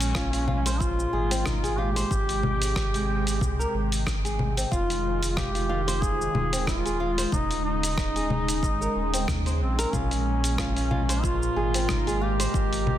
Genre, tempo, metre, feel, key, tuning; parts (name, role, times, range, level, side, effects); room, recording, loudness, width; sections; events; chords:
organic downtempo; 92 BPM; 4/4; swing 56% on 16ths; A4 = 438 Hz
warm duduk; melody; 0.0-13.0 s; C4 to Ab4; -30 LUFS; equal; digital delay
warm analog pad; sustained chords; 0.0-13.0 s; Bb2 to G5; -33 LUFS; right 2 dB; chorus, sidechain pumping
warm sub bass; bass; 0.0-13.0 s; Eb1 to Eb2; -28 LUFS; equal; sidechain pumping
dusty soul sampler-style drum kit; drums; 0.0-13.0 s; congas, hi-hat, rim click, shaker; -30 LUFS; left 1 dB; studio reverb, soft clipping on snare
nylon-string guitar; arpeggios; 0.2-12.5 s; Ab3 to C5; -32 LUFS; equal; tape echo
electronic kick drum; drums; 0.2-12.7 s; -30 LUFS; equal; studio reverb
drifting glass-harmonics texture; texture; 10.4-13.0 s; Ab3 to Bb4; -35 LUFS; left 1 dB; chorus, built-in reverb
light reverb; dense, heavily limited modern master; -23 LUFS; side -12 dB against mid
0.0-13.0 A section
0.0 Bbm7; 2.1 Abmaj7; 4.7 Fm7; 7.3 Eb7sus4; 9.9 Bbm7